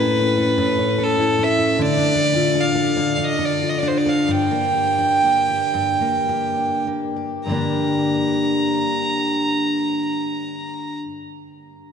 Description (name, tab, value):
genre	celtic folk, Celtic slow air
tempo	46-77 BPM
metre	3/4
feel	rubato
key	G minor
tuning	A4 = 442 Hz
part	clear fiddle	melody	0.0-11.0 s	A4 to Bb5	-21 LUFS	right 2 dB	none
part	picked steel-string acoustic guitar	accompaniment	0.0-11.1 s	G2 to A4	-20 LUFS	left 2 dB	none
room	wet cathedral reverb, RT60 4.5 s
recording	recorded in a church or concert hall, nothing above 10.9 kHz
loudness	-17 LUFS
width	side -7 dB against mid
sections	0.0-7.5 A section; 7.5-11.2 B section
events	slowing down 1.8-7.5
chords	0.0 A; 1.8 Dm; 4.3 Gm